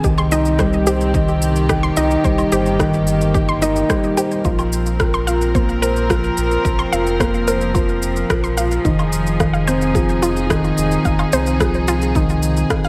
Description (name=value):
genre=piano and strings electronica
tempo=109 BPM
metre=4/4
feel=straight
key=F minor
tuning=A4 = 440 Hz
part: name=warm studio string section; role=sustained chords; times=0.0-12.9 s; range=Eb3 to Bb4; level=-26 LUFS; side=equal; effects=sidechain pumping
part: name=unison pluck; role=arpeggios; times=0.0-12.9 s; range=Eb4 to C6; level=-27 LUFS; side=equal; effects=sidechain pumping, delay
part: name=felt-muted upright piano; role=riff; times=0.0-12.9 s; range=Eb3 to C5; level=-21 LUFS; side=equal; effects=delay
part: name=round analog bass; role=bass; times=0.0-12.6 s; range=F1 to C2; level=-24 LUFS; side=equal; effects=sidechain pumping
part: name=electronic kick drum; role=drums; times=0.0-12.8 s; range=none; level=-23 LUFS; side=equal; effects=overdrive
part: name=electronic shaker, woodblock and rim click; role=drums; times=0.0-12.9 s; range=none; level=-28 LUFS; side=equal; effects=overdrive
room=moderate scoring stage reverb, RT60 1.9 s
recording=none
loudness=-17 LUFS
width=mono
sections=0.0-12.9 A section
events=none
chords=0.0 Cm; 4.5 Bbsus2; 8.9 Fm7